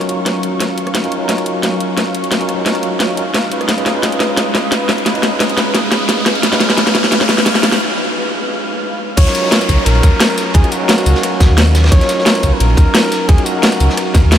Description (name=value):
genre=liquid drum and bass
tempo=175 BPM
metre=4/4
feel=swing 54% on 16ths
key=Eb minor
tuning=A4 = 438 Hz
part: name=bell-like tine electric piano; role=accompaniment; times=0.0-14.4 s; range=Gb3 to F5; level=-19 LUFS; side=equal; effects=fast stereo tremolo, low-pass filter, analog delay
part: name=warm analog pad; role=sustained chords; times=0.0-9.1 s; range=Gb3 to F6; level=-23 LUFS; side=left 1 dB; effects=chorus
part: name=drum and bass drum kit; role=drums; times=0.0-14.4 s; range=crash cymbal, hi-hat, rim click, snare drum, tambourine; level=-15 LUFS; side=equal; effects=overdrive
part: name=riser and downlifter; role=sound effects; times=2.6-11.9 s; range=none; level=-25 LUFS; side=equal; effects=none
part: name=sub bass with octave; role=bass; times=0.1-14.4 s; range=Ab1 to Eb2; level=-12 LUFS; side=equal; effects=high-pass filter
part: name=breathy flugelhorn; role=melody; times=9.2-14.2 s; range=Gb4 to Db5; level=-20 LUFS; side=equal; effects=analog delay
part: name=crunchy breakbeat drum kit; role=drums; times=9.2-14.4 s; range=ride cymbal, snare drum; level=-23 LUFS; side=equal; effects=high-pass filter on cymbals, high-pass filter on snare, high-pass filter on room
part: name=electronic kick drum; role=drums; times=9.2-14.2 s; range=none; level=-12 LUFS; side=equal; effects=overdrive
room=wet huge ambient reverb, RT60 7.5 s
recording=dreamy mix soaked in reverb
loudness=-11 LUFS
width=side -10 dB against mid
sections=0.0-9.2 A section; 9.2-14.4 B section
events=build-up 0.0-9.2; drum fill 0.0-7.8; riser 2.6-7.8; break 7.8-9.2; drop 9.2-14.4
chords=0.0 Ebm9; 3.5 Db9; 9.2 Ebm9